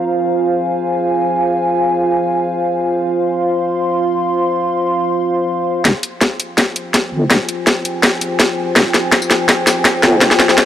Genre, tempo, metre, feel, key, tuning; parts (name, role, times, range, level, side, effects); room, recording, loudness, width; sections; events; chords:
half-time drum and bass; 165 BPM; 4/4; half-time; F minor; A4 = 440 Hz
dark analog pad; sustained chords; 0.0-10.7 s; F4 to C6; -16 LUFS; equal; chorus, sidechain pumping
deep soft wobble bass; bass; 5.8-10.3 s; F1 to G1; -16 LUFS; left 1 dB; chorus, high-pass filter
drum and bass drum kit; drums; 5.8-10.7 s; hi-hat, snare drum, tambourine; -12 LUFS; left 1 dB; overdrive, high-pass filter on snare, high-pass filter on hats, high-pass filter on perc
electronic kick drum; drums; 5.8-10.7 s; -19 LUFS; equal; overdrive, high-pass filter on kick
light reverb; dry, gritty hardware recording, low-pass filter; -13 LUFS; side -10 dB against mid
0.0-5.9 A section; 5.9-10.7 B section
filter sweep 0.0-5.9; build-up 5.9-10.7; drum fill 5.9-10.7
0.0 Fm